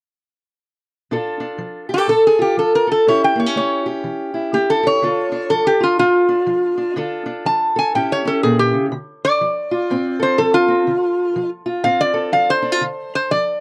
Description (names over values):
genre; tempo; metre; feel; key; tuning
acoustic country blues, solo or duo; 123 BPM; 4/4; swing 60% on 8ths; D harmonic minor, D minor from 8.9 s; A4 = 444 Hz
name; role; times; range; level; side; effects
fingerpicked steel-string acoustic guitar; accompaniment; 1.1-13.6 s; A2 to A4; -24 LUFS; equal; none
metal-body resonator slide guitar; melody; 1.9-13.6 s; F4 to A5; -18 LUFS; equal; none
room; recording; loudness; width
little or no reverb; dry, close 1970s-style studio recording; -18 LUFS; mono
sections
1.1-8.9 A section; 8.9-13.6 B section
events
none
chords
1.1 Bbmaj7; 3.1 A7; 5.0 Dm; 8.0 A7; 8.9 Dm7